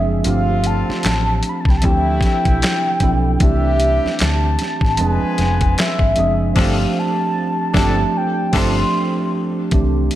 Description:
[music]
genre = R&B, neo-soul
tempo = 76 BPM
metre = 4/4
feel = swing 60% on 16ths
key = unclear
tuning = A4 = 440 Hz
[part]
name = mellow horn-like synth lead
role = melody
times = 0.0-9.3 s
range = E5 to C6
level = -21 LUFS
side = equal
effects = chorus
[part]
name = tine electric piano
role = accompaniment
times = 0.0-10.2 s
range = Eb3 to A4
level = -20 LUFS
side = right 3 dB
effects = ensemble chorus
[part]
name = vintage muted fingered electric bass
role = bass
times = 0.0-10.1 s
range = F1 to D2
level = -19 LUFS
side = equal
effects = none
[part]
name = clear horn section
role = stabs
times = 0.2-8.7 s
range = C3 to B4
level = -28 LUFS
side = left 2 dB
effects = slapback echo, tape echo
[part]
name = boom bap sampler-style drum kit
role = drums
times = 0.2-10.2 s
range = crash cymbal, handclaps, hi-hat, kick drum, snare drum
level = -19 LUFS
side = equal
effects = none
[sound]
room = moderate lush hall reverb, RT60 1.9 s, digital ambience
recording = big arena sound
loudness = -15 LUFS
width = side -13 dB against mid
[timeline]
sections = 0.0-9.7 A section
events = band accent 6.6-9.7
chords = 0.2 G9sus4; 1.8 Dm11; 3.4 C69; 5.0 Fm6; 6.6 G9sus4

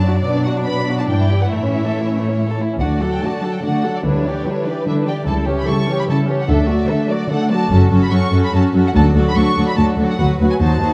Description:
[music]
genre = quick classical-period movement for string orchestra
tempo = 145 BPM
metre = 3/4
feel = straight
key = D major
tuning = A4 = 441 Hz
[part]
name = warm studio violin section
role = melody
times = 0.0-10.9 s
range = B4 to C#6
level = -28 LUFS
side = equal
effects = none
[part]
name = warm studio violin section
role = second line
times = 0.0-10.9 s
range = A3 to F#5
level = -26 LUFS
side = equal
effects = none
[part]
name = rich studio viola section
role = accompaniment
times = 0.0-10.9 s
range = E3 to F#4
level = -23 LUFS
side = equal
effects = none
[part]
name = rich studio cello section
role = bass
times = 0.0-10.9 s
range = D2 to D3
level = -21 LUFS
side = equal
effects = none
[part]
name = warm studio double bass section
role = bass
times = 2.8-10.8 s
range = F#1 to D#2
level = -21 LUFS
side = equal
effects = none
[sound]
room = moderate recital hall reverb, RT60 1.4 s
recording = dark, warm production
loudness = -17 LUFS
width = mono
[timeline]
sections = 0.0-2.8 A section; 2.8-10.9 B section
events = none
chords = 0.2 Bm; 1.1 Em7/G; 1.5 A; 2.8 D; 4.0 Em7/D; 5.3 A7/C#; 6.5 D; 7.7 F#m; 8.9 D

